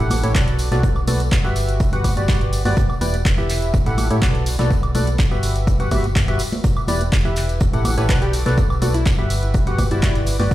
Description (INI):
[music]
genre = piano house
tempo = 124 BPM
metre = 4/4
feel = straight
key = unclear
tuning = A4 = 440 Hz
[part]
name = percussive organ stab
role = riff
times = 0.0-10.5 s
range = E4 to F#5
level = -24 LUFS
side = equal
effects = analog chorus, sidechain pumping, tape echo
[part]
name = solid FM bass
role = bass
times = 0.0-10.5 s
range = E1 to A2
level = -20 LUFS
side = equal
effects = sidechain pumping
[part]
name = tambourine and congas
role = percussion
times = 0.0-10.5 s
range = none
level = -29 LUFS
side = left 1 dB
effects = none
[part]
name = punchy analog drum machine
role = drums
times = 0.1-10.5 s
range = handclaps, hi-hat, woodblock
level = -28 LUFS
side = right 1 dB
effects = none
[part]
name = unplugged drum kit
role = drums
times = 0.1-10.5 s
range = hi-hat, snare drum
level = -37 LUFS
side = right 2 dB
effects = none
[part]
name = electronic kick drum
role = drums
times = 0.3-10.5 s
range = none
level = -19 LUFS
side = equal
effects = none
[part]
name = plucky unison lead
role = melody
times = 8.0-10.4 s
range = E4 to B4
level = -29 LUFS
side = left 2 dB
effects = tape echo
[sound]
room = digital ambience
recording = played on a big sound system in a bare room, large studio reverb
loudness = -16 LUFS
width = side -15 dB against mid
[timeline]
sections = 0.0-10.5 A section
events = none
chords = 0.0 A7; 0.6 Bm7; 1.6 Gmaj7; 2.8 Em7; 3.7 A7; 4.5 Bm7; 5.4 Gmaj7; 6.6 Em7; 7.6 A7; 8.3 Bm7; 9.3 Gmaj7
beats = 0.35 | 0.83 1.32 1.80 2.29 | 2.77 3.25 3.74 4.22 | 4.71 5.19 5.67 6.16 | 6.64 7.12 7.61 8.09 | 8.58 9.06 9.54 10.03 | 10.51